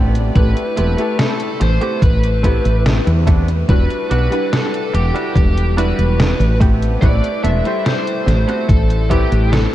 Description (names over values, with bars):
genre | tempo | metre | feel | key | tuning
vaporwave | 72 BPM | 4/4 | straight | unclear | A4 = 436 Hz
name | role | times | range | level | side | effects
direct-recorded clean electric guitar | riff | 0.0-9.3 s | G3 to G4 | -26 LUFS | right 2 dB | analog chorus, tape echo
woody fretless electric bass | bass | 0.0-9.7 s | E1 to E2 | -15 LUFS | equal | none
detuned 8-bit digital drum machine | drums | 0.2-9.7 s | hi-hat, snare drum | -22 LUFS | equal | none
biting lead guitar | melody | 0.4-9.7 s | G4 to E5 | -22 LUFS | left 1 dB | overdrive, tape echo
warm electric grand piano | accompaniment | 0.4-9.7 s | G3 to F#5 | -23 LUFS | equal | lush chorus, tape echo
electronic kick drum | drums | 0.4-9.3 s | none | -14 LUFS | equal | none
room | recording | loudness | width
light reverb, digital ambience | cassette tape | -13 LUFS | side -13 dB against mid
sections
0.0-9.7 A section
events
none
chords
0.0 Am9; 3.7 Em9; 6.6 Am9